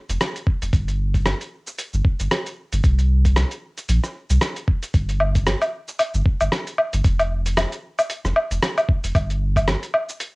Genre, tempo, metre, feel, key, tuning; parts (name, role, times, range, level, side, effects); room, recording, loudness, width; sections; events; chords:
organic downtempo; 114 BPM; 4/4; swing 57% on 16ths; G minor pentatonic; A4 = 435 Hz
warm sub bass; bass; 0.1-9.8 s; F1 to C2; -20 LUFS; equal; sidechain pumping
dusty soul sampler-style drum kit; drums; 0.1-10.3 s; hi-hat, rim click, shaker, woodblock; -22 LUFS; equal; overdrive, cassette tape
electronic kick drum; drums; 0.5-9.7 s; -18 LUFS; equal; overdrive, cassette tape
light reverb; home recording on cassette; -19 LUFS; side -27 dB against mid
0.0-10.4 A section